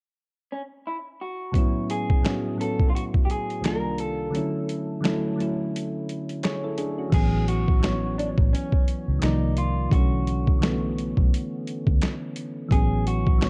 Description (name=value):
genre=lo-fi hip hop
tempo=86 BPM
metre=4/4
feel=swing 58% on 16ths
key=A major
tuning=A4 = 440 Hz
part: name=electric guitar through a small old amp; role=melody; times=0.5-13.5 s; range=C#4 to Bb4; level=-34 LUFS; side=equal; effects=low-pass filter
part: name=soft electric-piano-like synth keys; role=accompaniment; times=1.5-13.5 s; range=C2 to D5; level=-30 LUFS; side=equal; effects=chorus, low-pass filter
part: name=boom bap sampler-style drum kit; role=drums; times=1.5-13.5 s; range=crash cymbal, handclaps, hi-hat, kick drum, snare drum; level=-25 LUFS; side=equal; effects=vintage 12-bit sampler grit
part: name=vintage muted fingered electric bass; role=bass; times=7.1-13.5 s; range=A1 to D2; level=-28 LUFS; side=equal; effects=none
room=light reverb, digital ambience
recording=dark, warm production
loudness=-24 LUFS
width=mono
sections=0.0-1.5 A section; 1.5-7.1 B section; 7.1-13.5 C section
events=break 4.3-7.1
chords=0.0 N.C.; 1.5 A69; 3.6 Cm11; 4.3 Dmaj9#11; 7.1 A69; 9.2 Cm11; 9.9 Bm11; 12.7 A69